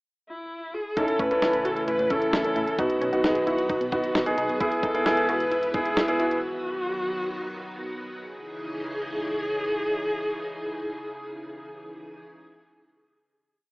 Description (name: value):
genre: synth-pop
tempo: 132 BPM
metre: 4/4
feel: straight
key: C# minor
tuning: A4 = 444 Hz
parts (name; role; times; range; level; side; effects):
- dark viola; melody; 0.3-12.2 s; E4 to B4; -29 LUFS; equal; digital delay
- clear grand piano; accompaniment; 1.0-6.4 s; B3 to A4; -25 LUFS; equal; none
- string machine, full ensemble; sustained chords; 1.0-12.2 s; G#2 to G#4; -34 LUFS; equal; ensemble chorus
- wide unison pluck; arpeggios; 1.0-6.4 s; B3 to F#4; -32 LUFS; equal; digital delay
- solid FM bass; bass; 1.0-4.5 s; A1 to B2; -37 LUFS; equal; none
- clean 12-bit digital drum machine; drums; 1.0-6.4 s; hi-hat, kick drum, snare drum; -28 LUFS; equal; none
room: moderate digital room reverb, RT60 1.1 s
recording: rough home demo mix, AM radio sound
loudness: -23 LUFS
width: side -24 dB against mid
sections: 0.0-1.0 pickup bar; 1.0-8.2 pre-chorus; 8.2-11.9 final chord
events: none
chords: 0.0 N.C.; 1.0 A; 2.8 B; 4.6 E; 6.4 B; 8.2 C#madd9